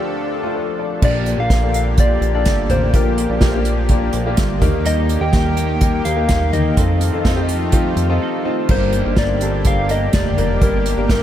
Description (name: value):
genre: piano-driven pop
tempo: 125 BPM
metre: 4/4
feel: straight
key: G minor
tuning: A4 = 440 Hz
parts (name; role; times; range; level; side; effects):
- clear upright piano; accompaniment; 0.0-11.2 s; D2 to F5; -22 LUFS; left 3 dB; wide subtle chorus
- lush unison pad; sustained chords; 0.0-11.2 s; D3 to A4; -28 LUFS; equal; chorus
- soft struck synth lead; melody; 1.0-11.2 s; Bb4 to G5; -23 LUFS; left 1 dB; chorus, diffuse ambient delay
- chorused synth bass; bass; 1.0-11.2 s; F1 to F2; -19 LUFS; equal; none
- unplugged drum kit; drums; 1.0-11.2 s; crash cymbal, hi-hat, kick drum, snare drum, toms; -18 LUFS; equal; none
- twelve-string electric guitar; riff; 4.8-11.2 s; G2 to A4; -27 LUFS; right 6 dB; wide subtle chorus
room: moderate huge ambient reverb, RT60 8.4 s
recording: dreamy mix soaked in reverb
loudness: -14 LUFS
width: side -11 dB against mid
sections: 0.0-1.0 A section; 1.0-8.7 B section; 8.7-11.2 C section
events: break 8.2-8.7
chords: 0.0 Dm; 1.0 Bb6; 2.9 Gm7/Bb; 4.6 Eb; 6.8 F7; 8.7 Gm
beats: 0.06 0.54 | 1.02 1.50 1.98 2.46 | 2.94 3.42 3.90 4.38 | 4.86 5.34 5.82 6.30 | 6.78 7.26 7.74 8.22 | 8.70 9.18 9.65 10.13 | 10.62 11.10